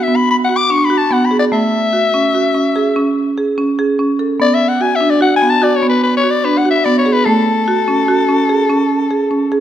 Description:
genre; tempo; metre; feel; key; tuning
contemporary instrumental, contemporary; 146 BPM; 7/4; straight; B dorian; A4 = 442 Hz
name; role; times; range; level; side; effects
growling soprano saxophone; melody; 0.0-9.6 s; A4 to D6; -15 LUFS; left 4 dB; none
marimba with medium mallets; arpeggios; 0.1-9.6 s; A3 to A4; -14 LUFS; right 2 dB; none
room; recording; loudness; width
wet scoring stage reverb, RT60 1.9 s; none; -11 LUFS; side -11 dB against mid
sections
0.0-9.6 A section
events
none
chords
0.0 Bm; 1.5 F#madd9; 4.4 Bm; 7.3 F#madd9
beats
0.29 0.70 1.11 | 1.52 1.93 2.34 2.75 3.16 3.57 3.98 | 4.39 4.80 5.21 5.62 6.03 6.44 6.85 | 7.26 7.67 8.08 8.49 8.90 9.31

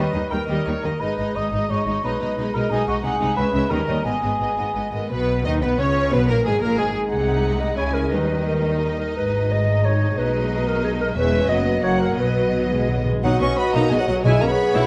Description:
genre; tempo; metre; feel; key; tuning
classical; 168-184 BPM; 3/4; rubato; G# minor, B major from 11.2 s; A4 = 440 Hz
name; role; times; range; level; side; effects
rich symphonic violin section; melody; 0.0-14.9 s; G#4 to G#5; -32 LUFS; equal; none
dark cor anglais; second line; 0.0-4.9 s; F#4 to D#5; -27 LUFS; equal; none
warm symphonic violin section; second line; 0.0-14.9 s; G3 to C#6; -31 LUFS; equal; none
rich studio viola section; accompaniment; 0.0-14.9 s; F#3 to G#4; -28 LUFS; equal; none
rich symphonic cello section; bass; 0.0-14.8 s; E2 to D#3; -28 LUFS; equal; none
rich symphonic double bass section; bass; 0.0-14.8 s; E1 to D#2; -29 LUFS; equal; none
mellow clarinet; second line; 4.9-12.9 s; G#4 to D#5; -26 LUFS; equal; none
timpani; percussion; 6.1-6.6, 12.2-14.7 s; B2; -29 LUFS; equal; none
warm bassoon; accompaniment; 13.2-14.9 s; F#3 to C#4; -24 LUFS; equal; none
room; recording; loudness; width
wet recital hall reverb, RT60 1.3 s; none; -21 LUFS; mono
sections
0.0-5.1 A section; 5.1-13.2 A section; 13.2-14.9 B section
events
timpani fill 12.2-13.2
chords
0.0 D#; 1.0 G#m; 2.0 G#m/B; 3.0 G#7; 3.4 C#m; 3.7 D#7; 4.0 G#m; 5.1 Badd9; 6.1 G#m; 7.1 G#7/B#; 7.8 C#m; 8.1 D#; 9.2 G#m; 10.2 G#m/B; 11.2 C#m7/E; 11.5 B/F#; 12.2 B; 14.2 C#m7/B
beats
0.31 0.66 | 1.01 1.35 1.70 | 2.04 2.38 2.71 | 3.04 3.37 3.70 | 4.05 4.40 4.75 | 5.11 5.46 5.80 | 6.13 6.46 6.78 | 7.11 7.44 7.78 | 8.12 8.47 8.82 | 9.17 9.51 9.85 | 10.18 10.51 10.84 | 11.16 11.49 11.83 | 12.18 12.54 12.88 | 13.24 13.58 13.91 | 14.25 14.58

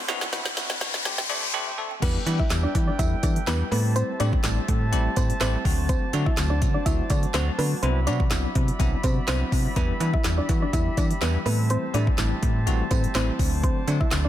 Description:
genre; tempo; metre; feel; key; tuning
dance-pop; 124 BPM; 4/4; straight; E minor; A4 = 437 Hz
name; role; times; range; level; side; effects
warm brass ensemble; sustained chords; 0.0-14.3 s; D3 to B5; -35 LUFS; right 1 dB; sidechain pumping
mallet-like synth pluck; arpeggios; 0.0-2.0 s; C3 to G5; -42 LUFS; equal; chorus, phaser, sidechain pumping, ping-pong delay
riser; sound effects; 0.0-1.5 s; none; -29 LUFS; left 3 dB; none
barky tine electric piano; accompaniment; 0.1-14.3 s; D3 to A4; -30 LUFS; left 1 dB; fast stereo tremolo, sidechain pumping
deep house drum kit; drums; 0.1-14.2 s; crash cymbal, handclaps, hi-hat, kick drum, snare drum; -25 LUFS; equal; none
tambourine; percussion; 0.1-14.2 s; none; -42 LUFS; right 13 dB; none
soft round pluck; melody; 2.0-14.3 s; B3 to E5; -30 LUFS; equal; chorus, sidechain pumping, ping-pong delay
slap-like FM bass; bass; 2.0-14.3 s; A1 to E3; -25 LUFS; equal; sidechain pumping
room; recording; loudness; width
light reverb; dense, heavily limited modern master, high-pass filter; -21 LUFS; side -12 dB against mid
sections
0.0-2.0 A section; 2.0-14.3 B section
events
build-up 0.0-2.0; drum fill 0.0-1.5; riser 0.0-2.0; break 1.5-2.0; drop 2.0-14.3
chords
0.1 Cmaj9#11; 1.1 D7sus4; 2.0 Em7; 3.7 Am7; 5.7 D7; 7.8 Cmaj9#11; 9.8 Em7; 11.5 Am7; 13.4 D7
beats
| 0.09 0.57 1.05 1.54 | 2.02 2.51 2.99 3.47 | 3.96 4.44 4.92 5.41 | 5.89 6.38 6.86 7.34 | 7.83 8.31 8.80 9.28 | 9.76 10.25 10.73 11.21 | 11.70 12.18 12.67 13.15 | 13.63 14.12

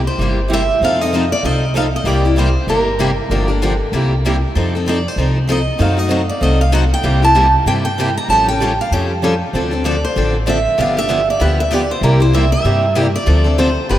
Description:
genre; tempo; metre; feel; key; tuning
acoustic string swing (jazz manouche); 193 BPM; 4/4; swing 58% on 8ths; C mixolydian; A4 = 439 Hz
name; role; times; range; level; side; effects
upright bass; bass; 0.0-14.0 s; G1 to G2; -17 LUFS; equal; none
picked steel-string acoustic guitar; melody; 0.1-14.0 s; Bb4 to Bb5; -18 LUFS; right 1 dB; none
picked steel-string acoustic guitar; accompaniment; 0.2-14.0 s; C3 to A4; -20 LUFS; left 4 dB; none
picked steel-string acoustic guitar; accompaniment; 0.2-14.0 s; C3 to A4; -21 LUFS; right 3 dB; none
room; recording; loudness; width
wet cathedral reverb, RT60 6.1 s; in a vast, echoing space; -13 LUFS; side -12 dB against mid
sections
0.0-14.0 A section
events
none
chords
0.0 C7; 0.8 F7; 2.1 C7; 3.3 Gm7; 3.9 C7; 4.6 F7; 5.8 F#dim7; 7.0 C7; 8.3 Aaug7; 9.5 Dm7; 10.8 G7; 12.0 C7; 13.3 Dm7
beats
0.19 0.50 | 0.81 1.12 1.44 1.75 | 2.06 2.37 2.68 2.99 | 3.31 3.62 3.93 4.24 | 4.55 4.86 5.17 5.49 | 5.80 6.11 6.42 6.73 | 7.04 7.35 7.67 7.98 | 8.29 8.60 8.91 9.22 | 9.53 9.84 10.15 10.47 | 10.78 11.09 11.40 11.71 | 12.02 12.33 12.64 12.96 | 13.27 13.58 13.89

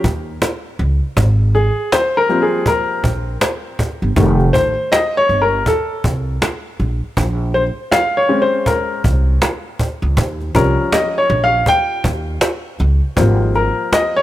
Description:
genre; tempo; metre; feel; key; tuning
hip hop, jazz-hop; 80 BPM; 4/4; swing 62% on 16ths; Bb dorian; A4 = 441 Hz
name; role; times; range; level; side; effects
warm upright piano; accompaniment; 0.0-14.2 s; Eb3 to G5; -16 LUFS; left 1 dB; none
upright bass; bass; 0.0-13.7 s; F1 to Eb2; -16 LUFS; right 1 dB; none
cajon; drums; 0.0-14.1 s; none; -19 LUFS; equal; none
room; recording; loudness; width
light reverb; none; -14 LUFS; side -14 dB against mid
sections
0.0-14.2 A section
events
upright piano solo 0.0-14.2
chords
0.0 Eb7(no3); 1.2 Abmaj13; 4.2 F9 (rootless); 7.2 Bbm9; 10.2 Eb9; 13.2 Abmaj13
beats
0.42 | 1.17 1.92 2.67 3.42 | 4.17 4.92 5.67 6.42 | 7.17 7.92 8.67 9.42 | 10.17 10.92 11.67 12.42 | 13.17 13.92

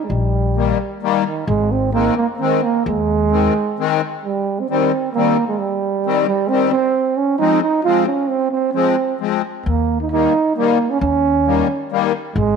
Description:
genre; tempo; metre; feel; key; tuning
alpine folk, alpine dance band; 132 BPM; 3/4; straight; unclear; A4 = 442 Hz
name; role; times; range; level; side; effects
warm euphonium; melody; 0.0-12.6 s; Eb3 to F4; -17 LUFS; right 6 dB; none
upright bass; bass; 0.1-3.5, 9.7-12.6 s; Ab1 to Eb2; -20 LUFS; left 2 dB; none
musette accordion; accompaniment; 0.6-12.1 s; Eb3 to C4; -20 LUFS; left 12 dB; none
room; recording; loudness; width
wet echo chamber reverb, RT60 1.6 s; 1960s-style stereo with parts hard left and right; -15 LUFS; side -6 dB against mid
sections
0.0-4.3 A section; 4.3-12.6 B section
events
none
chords
0.0 Eb; 1.5 Ab; 4.3 Cm; 6.9 Fm; 9.7 Eb7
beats
| 0.11 0.56 1.02 | 1.48 1.93 2.39 | 2.85 3.32 3.79 | 4.25 4.71 5.16 | 5.61 6.05 6.50 | 6.95 7.39 7.84 | 8.29 8.74 9.20 | 9.66 10.12 10.57 | 11.02 11.46 11.91 | 12.36

